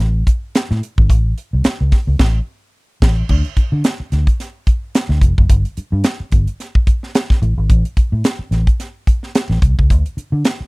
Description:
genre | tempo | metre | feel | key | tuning
funk | 109 BPM | 4/4 | swing 56% on 16ths | unclear | A4 = 440 Hz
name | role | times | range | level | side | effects
vintage muted fingered electric bass | bass | 0.0-10.6 s | F1 to D3 | -15 LUFS | equal | none
crisp fusion drum kit | drums | 0.0-10.6 s | crash cymbal, hi-hat, kick drum, snare drum | -14 LUFS | equal | none
room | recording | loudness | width
little or no reverb | dry, close 1970s-style studio recording | -14 LUFS | side -28 dB against mid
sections
0.0-3.3 A section; 3.3-10.7 B section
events
band accent 2.2-3.3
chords
none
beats
0.55 | 1.09 1.65 2.19 2.75 | 3.29 3.85 4.39 4.95 | 5.50 6.05 6.60 7.15 | 7.70 8.25 8.80 9.35 | 9.90 10.45

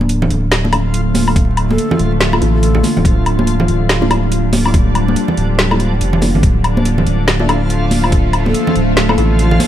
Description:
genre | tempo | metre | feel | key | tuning
deep dubstep | 142 BPM | 4/4 | swing 60% on 16ths, half-time | D minor | A4 = 438 Hz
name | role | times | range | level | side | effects
bowed-like drone | sustained chords | 0.0-9.7 s | D3 to A3 | -20 LUFS | equal | built-in reverb
saturated sub bass | bass | 0.0-9.6 s | D1 to A1 | -15 LUFS | equal | none
congas | percussion | 0.0-9.7 s | none | -20 LUFS | right 1 dB | dub echo
backwards swelling texture | texture | 0.8-9.7 s | F3 to F4 | -23 LUFS | left 1 dB | built-in reverb
garage drum kit | drums | 0.1-9.7 s | hi-hat, snare drum, woodblock | -18 LUFS | left 1 dB | overdrive, small room ambience
filtered dub chord stab | stabs | 0.6-9.3 s | D4 to A4 | -24 LUFS | left 2 dB | phaser, wide subtle chorus, dub echo
electronic kick drum | drums | 1.4-8.2 s | none | -13 LUFS | equal | overdrive, small room ambience
breathy mellow shakuhachi | melody | 1.7-2.8, 8.5-8.8 s | A4 | -26 LUFS | equal | dub echo
room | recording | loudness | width
light reverb | vinyl crackle | -11 LUFS | side -11 dB against mid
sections
0.0-9.7 A section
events
none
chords
0.0 Dmadd9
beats
0.09 0.52 0.94 | 1.36 1.78 2.21 2.63 | 3.05 3.47 3.90 4.32 | 4.74 5.16 5.59 6.01 | 6.43 6.85 7.28 7.70 | 8.12 8.54 8.97 9.39

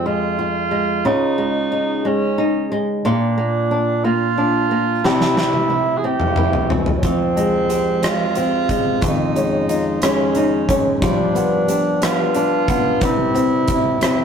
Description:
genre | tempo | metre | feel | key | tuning
six-eight pop ballad | 60 BPM (dotted quarters) | 6/8 | straight | F minor | A4 = 436 Hz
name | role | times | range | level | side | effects
warm tenor saxophone | melody | 0.0-14.2 s | C4 to Ab4 | -21 LUFS | right 4 dB | none
flamenco guitar | accompaniment | 0.0-14.2 s | F2 to G4 | -19 LUFS | left 1 dB | none
huge arena drum kit | drums | 5.0-14.2 s | hi-hat, kick drum, rim click, snare drum, toms | -22 LUFS | equal | none
fingerpicked plugged-in steel-string acoustic guitar | arpeggios | 7.0-14.2 s | Eb3 to G4 | -22 LUFS | left 2 dB | none
room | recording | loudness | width
moderate studio reverb, RT60 0.6 s | rough rehearsal-room recording | -16 LUFS | side -7 dB against mid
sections
0.0-14.2 A section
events
drum fill 5.0-7.0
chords
0.0 Fmadd9; 1.0 Dbadd9; 3.0 Bb; 5.0 C; 7.0 Fmadd9; 9.0 Dbadd9/F; 11.0 G7; 13.0 C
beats
0.05 | 1.05 2.04 | 3.04 4.04 | 5.04 6.03 | 7.03 8.03 | 9.02 10.02 | 11.02 12.02 | 13.01 14.01

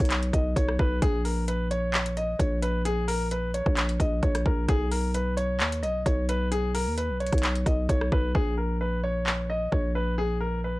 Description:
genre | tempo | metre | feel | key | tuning
hip hop, trap | 131 BPM | 4/4 | half-time | Bb phrygian | A4 = 442 Hz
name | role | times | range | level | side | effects
warm grand piano | melody | 0.0-10.8 s | Ab4 to D#5 | -30 LUFS | equal | low-pass filter
growling 808-style bass | bass | 0.0-10.8 s | Bb1 to D#2 | -27 LUFS | equal | none
trap drum kit | drums | 0.0-9.8 s | handclaps, hi-hat, kick drum, rim click | -26 LUFS | equal | vintage 12-bit sampler grit
room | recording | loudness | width
little or no reverb | dry, gritty hardware recording, transformer saturation | -24 LUFS | side -20 dB against mid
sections
0.0-8.3 A section; 8.3-10.8 B section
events
hi-hats muted 8.3-10.8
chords
0.0 N.C.; 1.0 Bbm; 4.7 B; 8.3 Bbm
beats
0.10 0.56 | 1.02 1.48 1.94 2.40 | 2.85 3.31 3.77 4.23 | 4.68 5.14 5.60 6.06 | 6.52 6.97 7.43 7.89 | 8.35 8.81 9.27 9.72 | 10.18 10.64

